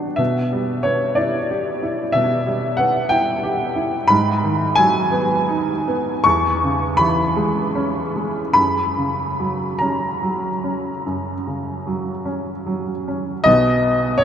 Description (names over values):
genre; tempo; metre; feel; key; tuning
classical, romantic nocturne for solo piano; 47-63 BPM (dotted quarters); 12/8; rubato; unclear; A4 = 442 Hz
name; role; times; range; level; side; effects
clear upright piano; solo; 0.0-14.2 s; B1 to C#6; -17 LUFS; equal; none
room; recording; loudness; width
wet huge ambient reverb, RT60 7.6 s; in a vast, echoing space; -17 LUFS; side -9 dB against mid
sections
0.0-13.5 A section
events
none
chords
0.2 Em/B; 4.1 G#m7; 6.3 C#m/E; 8.6 F#; 13.5 B